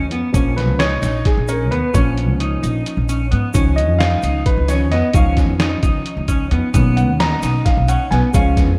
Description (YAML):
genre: progressive instrumental, band music in an uneven meter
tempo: 263 BPM (eighths)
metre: 7/8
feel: straight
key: Db mixolydian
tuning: A4 = 440 Hz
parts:
  - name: dark concert grand piano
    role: accompaniment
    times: 0.0-8.8 s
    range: Eb3 to Bb5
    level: -24 LUFS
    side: equal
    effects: none
  - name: clean electric guitar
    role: arpeggios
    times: 0.0-8.7 s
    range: Cb4 to Eb4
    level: -25 LUFS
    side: equal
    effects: subtle chorus, delay
  - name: upright bass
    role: bass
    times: 0.0-8.8 s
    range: Bb1 to Ab2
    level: -20 LUFS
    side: equal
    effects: none
  - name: trip hop sampler-style drum kit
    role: drums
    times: 0.1-8.7 s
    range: hi-hat, kick drum, snare drum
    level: -21 LUFS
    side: equal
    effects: none
  - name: tube shaker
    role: percussion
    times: 0.3-8.7 s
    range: none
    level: -41 LUFS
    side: equal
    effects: none
room: light reverb, studio reverb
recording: none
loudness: -17 LUFS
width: mono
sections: 0.0-8.8 A section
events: grand piano solo 0.0-8.8; break 2.2-3.5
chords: 0.3 Bbm; 3.5 Dbadd9; 6.7 Cbmaj7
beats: 0.12 | 0.35 0.57 0.80 1.03 1.26 1.49 1.72 | 1.94 2.17 2.40 2.63 2.86 3.09 3.31 | 3.54 3.77 4.00 4.23 4.46 4.69 4.91 | 5.14 5.37 5.60 5.83 6.05 6.28 6.51 | 6.74 6.97 7.20 7.42 7.65 7.88 8.11 | 8.34 8.56